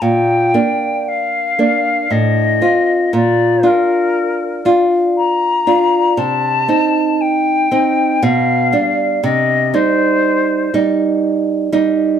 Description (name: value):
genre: romantic duo for flute and classical guitar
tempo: 59 BPM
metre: 3/4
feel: rubato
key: Bb major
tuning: A4 = 440 Hz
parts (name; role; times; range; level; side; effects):
- silver concert flute; melody; 0.0-10.7 s; Bb4 to Bb5; -16 LUFS; left 4 dB; none
- nylon-string guitar; accompaniment; 0.0-12.2 s; A2 to F4; -14 LUFS; right 2 dB; none
room: wet studio reverb, RT60 0.7 s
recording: none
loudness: -12 LUFS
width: side -8 dB against mid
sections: 0.0-12.2 A section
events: none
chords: 0.0 Bb; 2.1 F7/A; 3.1 Bb; 6.2 Cm; 8.2 G7/B; 9.2 Cm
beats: | 0.01 1.07 2.10 | 3.14 4.15 5.16 | 6.18 7.20 8.22 | 9.24 10.23 11.23